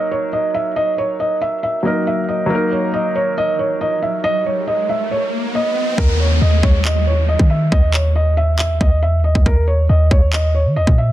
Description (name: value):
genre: hip hop, trap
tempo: 138 BPM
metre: 4/4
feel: half-time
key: Eb phrygian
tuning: A4 = 440 Hz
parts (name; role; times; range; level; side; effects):
- felt-muted upright piano; melody; 0.0-11.1 s; Bb4 to Fb5; -19 LUFS; right 1 dB; low-pass filter, digital delay
- clear concert grand piano; accompaniment; 0.0-6.0 s; Gb3 to Bb4; -22 LUFS; equal; low-pass filter
- riser and downlifter; sound effects; 3.3-9.5 s; none; -25 LUFS; left 2 dB; none
- clean 808-style bass; bass; 6.0-11.1 s; Eb2 to Eb3; -15 LUFS; equal; none
- trap drum kit; drums; 6.0-11.0 s; handclaps, kick drum; -15 LUFS; equal; none
room: little or no reverb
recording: dense, heavily limited modern master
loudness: -14 LUFS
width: side -14 dB against mid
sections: 0.0-6.0 A section; 6.0-11.1 B section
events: riser 3.3-6.0; hi-hats muted 6.0-11.1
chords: 0.0 Ebm; 6.0 N.C.; 9.5 Eb5